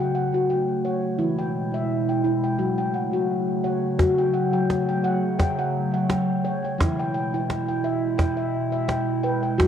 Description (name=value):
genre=world meditative, meditative tuned percussion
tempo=86 BPM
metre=4/4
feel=swing 55% on 16ths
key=unclear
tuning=A4 = 440 Hz
part: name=warbly tape-like pad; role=sustained chords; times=0.0-9.7 s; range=B2 to E4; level=-25 LUFS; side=right 1 dB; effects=chorus, built-in reverb, cassette tape
part: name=handpan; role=arpeggios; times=0.0-9.7 s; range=E3 to G5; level=-24 LUFS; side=left 2 dB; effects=cassette tape, analog delay
part: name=cajon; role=percussion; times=4.0-9.7 s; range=none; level=-23 LUFS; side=equal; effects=none
room=wet spring reverb, RT60 2.1 s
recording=home recording on cassette, lossy compression artefacts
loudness=-21 LUFS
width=side -8 dB against mid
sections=0.0-4.0 A section; 4.0-9.7 B section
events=none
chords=0.0 F#m; 1.2 E; 2.6 F#m; 6.8 E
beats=0.49 | 1.19 1.89 2.59 3.29 | 3.99 4.69 5.39 6.09 | 6.79 7.48 8.18 8.88 | 9.57